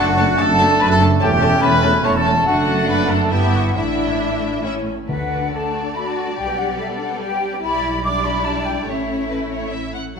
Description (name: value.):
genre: quick classical-period movement for symphony orchestra.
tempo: 134-147 BPM.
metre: 3/4.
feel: rubato.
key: D major.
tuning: A4 = 440 Hz.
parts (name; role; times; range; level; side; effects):
rich chamber violin section; melody; 0.0-10.2 s; B4 to A5; -29 LUFS; left 3 dB; none.
flute section; second line; 0.0-10.2 s; E5 to D6; -23 LUFS; left 2 dB; none.
mellow clarinet; second line; 0.0-4.9 s; C#4 to E4; -27 LUFS; left 2 dB; none.
rich studio violin section; second line; 0.0-10.2 s; G3 to F#4; -28 LUFS; left 2 dB; none.
rich chamber viola section; accompaniment; 0.0-10.2 s; F#3 to D4; -28 LUFS; right 2 dB; none.
warm bassoon; accompaniment; 0.0-4.9 s; A3 to D4; -26 LUFS; right 2 dB; none.
warm French horn section; sustained chords; 0.0-4.7 s; A3 to E4; -27 LUFS; left 2 dB; none.
warm trumpet section; stabs; 0.0-4.6 s; E4 to C#5; -19 LUFS; equal; none.
warm chamber cello section; bass; 0.0-10.2 s; E2 to B4; -25 LUFS; right 1 dB; none.
warm studio double bass section; bass; 0.0-10.2 s; E1 to D2; -24 LUFS; right 2 dB; none.
timpani; percussion; 5.1-5.7 s; D3; -29 LUFS; left 5 dB; none.
room: wet recital hall reverb, RT60 1.3 s.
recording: minimal, uncompressed stereo recording.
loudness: -16 LUFS.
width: side -6 dB against mid.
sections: 0.0-5.1 A section; 5.1-10.2 B section.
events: none.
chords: 0.0 D/F#; 1.2 A7/E; 2.5 D/F#; 3.3 Em/G; 3.8 Asus4; 4.6 A; 5.1 D; 6.4 G/B; 7.6 Em7/B; 8.9 A.